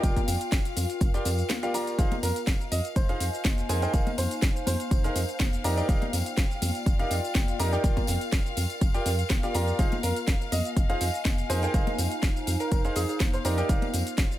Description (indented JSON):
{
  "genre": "piano house",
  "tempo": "123 BPM",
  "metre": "4/4",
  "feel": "swing 53% on 16ths",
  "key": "F dorian",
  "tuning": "A4 = 444 Hz",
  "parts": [
    { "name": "rich symphonic string section", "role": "sustained chords", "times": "0.0-14.4 s", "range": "F5", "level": "-38 LUFS", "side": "left 5 dB", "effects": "sidechain pumping" },
    { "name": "clear upright piano", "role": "riff", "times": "0.0-13.8 s", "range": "Eb4 to Bb5", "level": "-32 LUFS", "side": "right 1 dB", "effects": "sidechain pumping, digital delay" },
    { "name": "solid FM bass", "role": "bass", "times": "0.0-14.3 s", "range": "F1 to F2", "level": "-29 LUFS", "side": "equal", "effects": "sidechain pumping" },
    { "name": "electronic kick drum", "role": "drums", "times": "0.0-14.3 s", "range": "none", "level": "-26 LUFS", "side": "equal", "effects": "none" },
    { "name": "house drum kit", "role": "drums", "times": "0.0-14.4 s", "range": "hi-hat, shaker, snare drum", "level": "-34 LUFS", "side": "equal", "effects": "none" },
    { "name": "tambourine and congas", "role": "percussion", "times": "0.0-14.4 s", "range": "none", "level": "-37 LUFS", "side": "left 5 dB", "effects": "none" },
    { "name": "warbly tape-like pad", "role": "texture", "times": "0.0-14.4 s", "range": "Eb4 to Ab5", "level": "-36 LUFS", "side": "equal", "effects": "chorus, built-in reverb, sidechain pumping" },
    { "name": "warm concert grand piano", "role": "melody", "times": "2.2-5.2, 10.0-13.5 s", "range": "Ab4 to F5", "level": "-35 LUFS", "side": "right 1 dB", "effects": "digital delay" }
  ],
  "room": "small room ambience",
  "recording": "none",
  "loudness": "-24 LUFS",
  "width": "side -14 dB against mid",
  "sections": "0.0-14.4 A section",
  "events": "none",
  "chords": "0.0 Gm7/F; 2.0 Fm7; 3.7 Bb9sus4/F; 5.6 Ebmaj9/F; 7.8 Gm7/F; 9.8 Fm7; 11.5 Bb9sus4/F; 13.4 Ebmaj9/F"
}